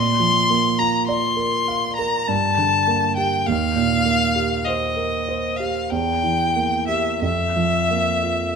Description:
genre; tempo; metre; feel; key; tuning
classical, romantic duo for violin and grand piano; 44-52 BPM; 3/4; rubato; Bb major; A4 = 440 Hz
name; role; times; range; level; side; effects
rich violin; melody; 0.0-8.6 s; Eb5 to C6; -20 LUFS; left 4 dB; none
dark concert grand piano; accompaniment; 0.0-8.6 s; Eb2 to F5; -22 LUFS; right 5 dB; none
room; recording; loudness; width
moderate recital hall reverb, RT60 1.7 s; close, detailed microphones; -18 LUFS; side -6 dB against mid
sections
0.0-8.6 A section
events
none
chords
0.0 Bb; 2.3 Gm; 3.5 Cm7/Eb; 5.9 Edim; 7.2 Bb5/F

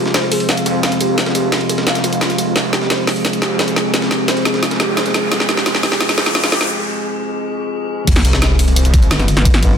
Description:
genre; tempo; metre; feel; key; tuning
dark technical drum and bass; 174 BPM; 4/4; straight; F minor; A4 = 440 Hz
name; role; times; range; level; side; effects
metallic inharmonic drone; sustained chords; 0.0-9.8 s; C3 to Ab4; -20 LUFS; equal; chorus, built-in reverb, sidechain pumping
warbly dusty pluck; arpeggios; 0.0-6.6 s; F4 to F5; -22 LUFS; right 2 dB; lush chorus, sidechain pumping, dub echo
wide detuned saw bass; bass; 0.0-9.1 s; Eb1 to F2; -21 LUFS; equal; chorus, overdrive, sidechain pumping, high-pass filter
breakbeat sampler-style drum kit; drums; 0.1-9.7 s; hi-hat, ride cymbal, snare drum; -26 LUFS; equal; high-pass filter on snare, studio reverb, high-pass filter on cymbals, high-pass filter on hats
drum and bass drum kit; drums; 0.1-9.7 s; crash cymbal, hi-hat, snare drum; -18 LUFS; equal; overdrive, studio reverb
riser and sub drop; sound effects; 4.2-9.5 s; none; -23 LUFS; equal; none
electronic kick drum; drums; 8.1-9.7 s; none; -12 LUFS; equal; studio reverb
metallic wobble bass; bass; 9.1-9.8 s; G1; -16 LUFS; equal; chorus, tube saturation
room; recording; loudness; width
moderate plate reverb, RT60 1.3 s; dense, heavily limited modern master, high-pass filter; -13 LUFS; side -7 dB against mid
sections
0.0-8.1 A section; 8.1-9.8 B section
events
build-up 0.0-8.1; drum fill 0.0-6.7; filter sweep on synth arpeggio sound 0.0-8.1; riser 4.2-6.7; break 6.7-8.1; drop 8.1-9.8; impact 8.1-9.5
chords
0.0 Fm

